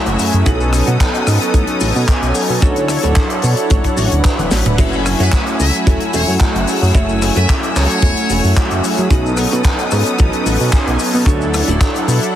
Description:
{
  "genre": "nu-disco, nu disco",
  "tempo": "111 BPM",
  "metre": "4/4",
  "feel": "straight",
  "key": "F# minor",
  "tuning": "A4 = 440 Hz",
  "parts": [
    { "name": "warm analog pad", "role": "accompaniment", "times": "0.0-12.4 s", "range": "F#3 to G#5", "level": "-18 LUFS", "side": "right 1 dB", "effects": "chorus, slapback echo" },
    { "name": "clear symphonic string section", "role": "sustained chords", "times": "0.0-12.4 s", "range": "A3 to E6", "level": "-25 LUFS", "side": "left 2 dB", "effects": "sidechain pumping" },
    { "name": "chorused synth bass", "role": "bass", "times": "0.1-12.2 s", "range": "D1 to B2", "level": "-16 LUFS", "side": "equal", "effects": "sidechain pumping" },
    { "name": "tight funk drum kit", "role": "drums", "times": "0.1-12.3 s", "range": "crash cymbal, handclaps, hi-hat, rim click, snare drum, toms", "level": "-21 LUFS", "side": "left 1 dB", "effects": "none" },
    { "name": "maracas", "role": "percussion", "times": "0.1-12.3 s", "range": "none", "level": "-30 LUFS", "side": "left 5 dB", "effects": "none" },
    { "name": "clean electric guitar", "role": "riff", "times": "0.2-12.1 s", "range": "D4 to E5", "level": "-25 LUFS", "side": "right 2 dB", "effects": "lush chorus, vintage 12-bit sampler grit, slapback echo" },
    { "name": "kick drum", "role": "drums", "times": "0.5-11.9 s", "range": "none", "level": "-14 LUFS", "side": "equal", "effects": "none" },
    { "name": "muted trumpet section", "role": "melody", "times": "5.2-8.5 s", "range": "B4 to E5", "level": "-24 LUFS", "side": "left 2 dB", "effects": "analog delay" }
  ],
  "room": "light reverb, small room ambience",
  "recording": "heavily compressed radio sound, multiband compression",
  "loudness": "-12 LUFS",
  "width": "side -11 dB against mid",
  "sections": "0.0-12.4 A section",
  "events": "drum fill 4.4-4.8",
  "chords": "0.5 B7; 2.6 Dmaj7; 4.8 F#m7; 9.1 B7; 11.3 Dmaj7",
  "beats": "| 0.46 1.00 1.54 2.08 | 2.62 3.16 3.70 4.24 | 4.78 5.33 5.87 6.41 | 6.95 7.49 8.03 8.57 | 9.11 9.65 10.19 10.73 | 11.27 11.81 12.35"
}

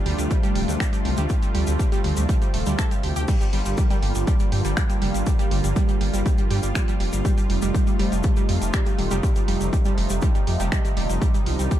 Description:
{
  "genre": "melodic techno",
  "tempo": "121 BPM",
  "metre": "4/4",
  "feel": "straight",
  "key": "G minor",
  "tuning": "A4 = 439 Hz",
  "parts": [
    { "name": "lush unison pad", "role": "sustained chords", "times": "0.0-11.8 s", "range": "C3 to G4", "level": "-29 LUFS", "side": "equal", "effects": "chorus, phaser, sidechain pumping" },
    { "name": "wide unison pluck", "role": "arpeggios", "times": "0.1-11.8 s", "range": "F3 to A5", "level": "-28 LUFS", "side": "right 2 dB", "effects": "sidechain pumping, dub echo" },
    { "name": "swelling detuned saw bass", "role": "bass", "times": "0.1-11.7 s", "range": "D1 to G2", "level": "-24 LUFS", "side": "equal", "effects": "tube saturation, sidechain pumping" },
    { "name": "punchy analog drum machine", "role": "drums", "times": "0.1-11.8 s", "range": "crash cymbal, finger snaps, hi-hat", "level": "-33 LUFS", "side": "equal", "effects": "sidechain pumping on hats, sidechain pumping on cymbals" },
    { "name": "egg shaker", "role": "percussion", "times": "0.2-11.8 s", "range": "none", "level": "-38 LUFS", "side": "left 5 dB", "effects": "none" },
    { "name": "electronic kick drum", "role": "drums", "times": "0.3-11.8 s", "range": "none", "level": "-21 LUFS", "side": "equal", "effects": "none" }
  ],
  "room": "digital ambience",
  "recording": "dark, warm production",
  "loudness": "-19 LUFS",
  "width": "side -12 dB against mid",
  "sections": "0.0-11.8 A section",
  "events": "none",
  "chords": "0.0 Dm7; 3.3 Gm7; 7.2 F7; 11.2 Cm",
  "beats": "0.31 0.80 | 1.30 1.79 2.29 2.79 | 3.28 3.78 4.27 4.77 | 5.27 5.76 6.26 6.75 | 7.25 7.75 8.24 8.74 | 9.23 9.73 10.22 10.72 | 11.22 11.71"
}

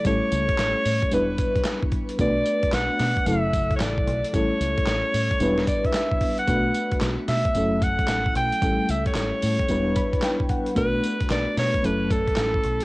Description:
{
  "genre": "R&B, new jack swing",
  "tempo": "112 BPM",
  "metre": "4/4",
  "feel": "swing 64% on 16ths",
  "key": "B minor",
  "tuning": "A4 = 439 Hz",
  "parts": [
    { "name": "bright alto saxophone", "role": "melody", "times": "0.0-12.8 s", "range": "A4 to G5", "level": "-25 LUFS", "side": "equal", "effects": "cassette tape, shimmer reverb" },
    { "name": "FM electric piano with tremolo", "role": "accompaniment", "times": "0.0-12.8 s", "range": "C#3 to B5", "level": "-25 LUFS", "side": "left 1 dB", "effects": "cassette tape, shimmer reverb" },
    { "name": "deep dub fingered electric bass", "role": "bass", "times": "0.0-12.8 s", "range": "E1 to B2", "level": "-28 LUFS", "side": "equal", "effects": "none" },
    { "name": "boom bap sampler-style drum kit", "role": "drums", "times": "0.0-12.8 s", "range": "handclaps, hi-hat, kick drum, snare drum, tambourine", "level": "-26 LUFS", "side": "equal", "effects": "cassette tape" }
  ],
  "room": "wet studio ambience, RT60 0.5 s",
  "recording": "home recording on cassette",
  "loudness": "-20 LUFS",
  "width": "side -21 dB against mid",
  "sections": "0.0-12.8 A section",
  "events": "FM electric piano fill 9.7-10.8",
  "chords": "0.1 A7; 1.1 Em7; 2.2 Bm7; 3.3 F#m7; 4.3 A7; 5.4 Em7; 6.5 Bm7; 7.5 F#m7; 8.6 A7; 9.7 Em7; 10.8 Bm7; 11.8 F#m7",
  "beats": "| 0.05 0.59 1.12 1.66 | 2.19 2.73 3.26 3.80 | 4.34 4.87 5.41 5.94 | 6.48 7.01 7.55 8.09 | 8.62 9.16 9.69 10.23 | 10.76 11.30 11.84 12.37"
}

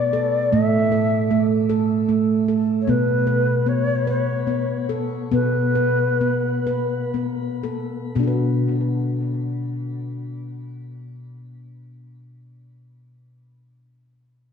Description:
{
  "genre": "world meditative, meditative tuned percussion",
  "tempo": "38-51 BPM (dotted quarters)",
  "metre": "6/8",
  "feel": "straight",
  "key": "B minor",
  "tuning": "A4 = 438 Hz",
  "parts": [
    { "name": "mellow Native American-style cedar flute", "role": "melody", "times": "0.0-7.1 s", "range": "B4 to E5", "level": "-23 LUFS", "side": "left 1 dB", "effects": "shimmer reverb" },
    { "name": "handpan", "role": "arpeggios", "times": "0.0-12.8 s", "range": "A2 to B4", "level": "-20 LUFS", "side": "right 1 dB", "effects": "tape echo" }
  ],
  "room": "wet echo chamber reverb, RT60 1.5 s, small room ambience",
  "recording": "dark, warm production",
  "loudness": "-19 LUFS",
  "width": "side -6 dB against mid",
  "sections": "0.0-8.2 A section; 8.2-11.3 B section",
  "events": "slowing down 2.9-8.2",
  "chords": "0.0 Bm; 0.5 A5; 2.9 Asus2/B; 8.2 Bm",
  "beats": "| 0.53 1.70 | 2.88 4.08 | 5.33 6.67 | 8.15 9.73"
}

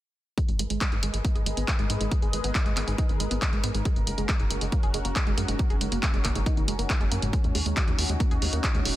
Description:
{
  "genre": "uplifting trance",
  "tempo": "138 BPM",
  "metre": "4/4",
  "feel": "straight",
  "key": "G# minor",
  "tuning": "A4 = 444 Hz",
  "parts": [
    { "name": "lush unison pad", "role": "sustained chords", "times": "0.4-9.0 s", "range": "G#3 to D#5", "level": "-35 LUFS", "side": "equal", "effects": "chorus, phaser, sidechain pumping" },
    { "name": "tight sequenced synth", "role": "arpeggios", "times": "0.4-8.9 s", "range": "G#2 to G#4", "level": "-33 LUFS", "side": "right 2 dB", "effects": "chorus, phaser, sidechain pumping, digital delay" },
    { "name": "electronic kick drum", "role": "drums", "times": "0.4-8.7 s", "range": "none", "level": "-26 LUFS", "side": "equal", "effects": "overdrive" },
    { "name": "punchy analog drum machine", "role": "drums", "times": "0.4-8.9 s", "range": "handclaps, hi-hat", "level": "-31 LUFS", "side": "equal", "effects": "sidechain pumping on hats" },
    { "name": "tight sequencer bass", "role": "bass", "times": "0.5-8.9 s", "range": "D#1 to G#2", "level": "-30 LUFS", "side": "equal", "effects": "sidechain pumping" }
  ],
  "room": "little or no reverb",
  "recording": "dense, heavily limited modern master",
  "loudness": "-23 LUFS",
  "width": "side -15 dB against mid",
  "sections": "0.4-9.0 A section",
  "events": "filter sweep on synth arpeggio sound 0.4-9.0",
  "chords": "0.4 G#madd9; 3.9 F#; 7.3 D#m7",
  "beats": "| 0.38 0.81 1.25 1.68 | 2.12 2.55 2.98 3.42 | 3.85 4.29 4.72 5.16 | 5.59 6.03 6.46 6.90 | 7.33 7.77 8.20 8.64"
}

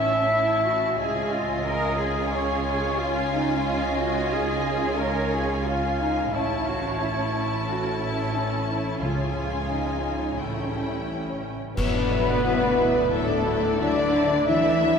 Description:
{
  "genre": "cinematic, epic orchestral film score",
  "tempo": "89 BPM",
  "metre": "4/4",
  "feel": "straight",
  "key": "D major from 11.8 s",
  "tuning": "A4 = 438 Hz",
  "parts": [
    { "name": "warm symphonic violin section", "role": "melody", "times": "0.0-15.0 s", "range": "D5 to A5", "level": "-33 LUFS", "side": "left 5 dB", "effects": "none" },
    { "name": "warm symphonic violin section", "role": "second line", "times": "0.0-15.0 s", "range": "E4 to E5", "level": "-33 LUFS", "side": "left 2 dB", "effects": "none" },
    { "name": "warm symphonic viola section", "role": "accompaniment", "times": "0.0-15.0 s", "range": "F#3 to E4", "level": "-32 LUFS", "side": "right 1 dB", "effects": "none" },
    { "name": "mellow French horn section", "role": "sustained chords", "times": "0.0-15.0 s", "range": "Eb3 to E4", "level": "-29 LUFS", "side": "left 3 dB", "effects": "none" },
    { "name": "dark trumpet section", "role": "stabs", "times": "0.0-15.0 s", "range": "Ab4 to F5", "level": "-28 LUFS", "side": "equal", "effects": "none" },
    { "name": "rich symphonic double bass section", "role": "bass", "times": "0.0-15.0 s", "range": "A1 to D2", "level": "-31 LUFS", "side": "right 2 dB", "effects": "none" },
    { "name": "warm symphonic cello section", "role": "bass", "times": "0.0-15.0 s", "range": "A2 to Bb4", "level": "-30 LUFS", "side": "right 2 dB", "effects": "none" },
    { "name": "timpani", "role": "percussion", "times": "9.0-10.0 s", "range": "Db3", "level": "-35 LUFS", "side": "equal", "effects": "none" },
    { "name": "flute section", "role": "second line", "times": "11.8-15.0 s", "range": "A4 to E5", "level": "-32 LUFS", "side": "left 1 dB", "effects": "none" },
    { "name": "warm studio string section", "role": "sustained chords", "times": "11.8-15.0 s", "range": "D4 to D5", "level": "-32 LUFS", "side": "left 2 dB", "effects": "none" },
    { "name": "clash cymbals and concert bass drum", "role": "percussion", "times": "11.8-13.1 s", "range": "none", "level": "-31 LUFS", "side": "equal", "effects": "none" }
  ],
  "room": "wet cathedral reverb, RT60 4.6 s",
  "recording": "recorded in a church or concert hall",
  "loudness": "-22 LUFS",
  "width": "side -6 dB against mid",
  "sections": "0.0-11.8 A section; 11.8-15.0 A section",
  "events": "band accent 11.8-12.4",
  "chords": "0.0 A; 1.0 Dbadd9; 6.3 A; 9.0 Db; 10.4 A7; 11.8 Dadd9",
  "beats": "0.32 | 0.98 1.65 2.32 2.98 | 3.65 4.32 4.99 5.67 | 6.34 7.01 7.68 8.36 | 9.03 9.71 10.39 11.09 | 11.77 12.45 13.12 13.80 | 14.48"
}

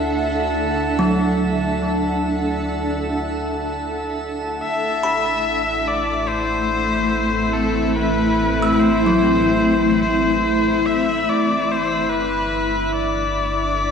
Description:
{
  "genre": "ambient",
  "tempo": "free time",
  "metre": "none",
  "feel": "none",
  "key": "D mixolydian",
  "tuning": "A4 = 437 Hz",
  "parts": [
    { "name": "granular cloud pad", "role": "sustained chords", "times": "0.0-13.9 s", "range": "A3 to F#5", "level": "-20 LUFS", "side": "equal", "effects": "built-in reverb, cassette tape" },
    { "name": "kalimba", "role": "arpeggios", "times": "0.0-12.8 s", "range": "F#3 to E6", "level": "-24 LUFS", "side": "right 2 dB", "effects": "cassette tape, analog delay" },
    { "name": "warm sub bass", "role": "bass", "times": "0.0-13.9 s", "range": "G1 to D2", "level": "-30 LUFS", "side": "right 1 dB", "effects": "none" },
    { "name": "drifting glass-harmonics texture", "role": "texture", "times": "0.0-13.9 s", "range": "E4 to A5", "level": "-26 LUFS", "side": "equal", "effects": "chorus, built-in reverb, cassette tape" },
    { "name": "rich electric violin", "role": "melody", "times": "4.6-13.9 s", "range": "A4 to E5", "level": "-21 LUFS", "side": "left 4 dB", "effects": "cassette tape, analog delay" }
  ],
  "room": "wet lush hall reverb, RT60 2.4 s",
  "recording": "home recording on cassette",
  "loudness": "-17 LUFS",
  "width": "side -6 dB against mid",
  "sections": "0.0-13.9 A section",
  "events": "fade-in on sub bass 0.0-13.9; fade-in on synth texture 0.0-13.9",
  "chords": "0.0 Dadd9; 4.7 Amadd9; 11.3 G69",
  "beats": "free time"
}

